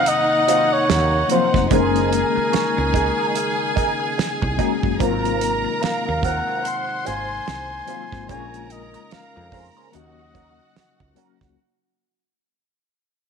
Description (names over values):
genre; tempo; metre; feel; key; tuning
lush 1970s-style soul; 73 BPM; 4/4; swing 58% on 16ths; Eb dorian; A4 = 440 Hz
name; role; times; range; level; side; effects
breathy flugelhorn; melody; 0.0-11.1 s; Bb4 to Ab5; -22 LUFS; left 1 dB; none
warm studio violin section; second line; 0.0-11.5 s; Eb4 to C6; -25 LUFS; equal; none
bright reed electric piano; accompaniment; 0.0-11.6 s; F3 to Gb4; -26 LUFS; left 14 dB; fast tremolo
percussive tonewheel organ; sustained chords; 0.0-11.6 s; C3 to Gb4; -32 LUFS; equal; slow rotary speaker, chorus vibrato
large celesta; texture; 0.0-7.9 s; Db6 to Gb6; -36 LUFS; right 14 dB; none
damped 70s drum kit; drums; 0.1-11.6 s; hi-hat, kick drum, snare drum; -24 LUFS; right 5 dB; none
electric guitar through a small old amp; riff; 0.3-11.5 s; Gb3 to Db5; -28 LUFS; right 14 dB; wah
woody fretless electric bass; bass; 0.9-11.5 s; F1 to F2; -26 LUFS; right 1 dB; none
room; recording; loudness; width
moderate echo chamber reverb, RT60 1.7 s, small room ambience; 1960s-style stereo with parts hard left and right; -18 LUFS; side -6 dB against mid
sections
0.0-11.6 A section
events
fade-out 0.0-11.6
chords
0.0 Ebm69; 1.7 Gb69; 5.0 Ab13; 8.3 Bbm9; 9.9 Ebm7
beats
0.06 0.89 | 1.71 2.53 3.36 4.18 | 5.00 5.83 6.65 7.47 | 8.29 9.12 9.94 10.76